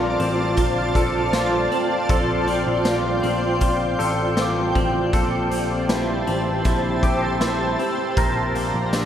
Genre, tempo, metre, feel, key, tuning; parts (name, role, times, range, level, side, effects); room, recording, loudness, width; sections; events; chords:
dream pop; 79 BPM; 4/4; straight; A4 = 441 Hz
shimmering ambient pad; sustained chords; 0.0-9.1 s; F4 to Bb5; -22 LUFS; right 1 dB; chorus, built-in reverb
clean electric guitar; arpeggios; 0.0-9.1 s; Bb3 to Bb4; -25 LUFS; left 2 dB; wide subtle chorus, digital delay
picked electric bass; bass; 0.0-9.1 s; A1 to Bb1; -26 LUFS; equal
raw garage drum kit; drums; 0.2-9.1 s; hi-hat, kick drum, snare drum, tambourine; -26 LUFS; equal
soft synth bell; texture; 0.8-8.5 s; D6 to F6; -37 LUFS; right 2 dB
wet concert hall reverb, RT60 2.1 s; -18 LUFS; side -10 dB against mid
0.0-9.1 A section
0.0 Dm7; 5.1 Am7; 8.2 Bb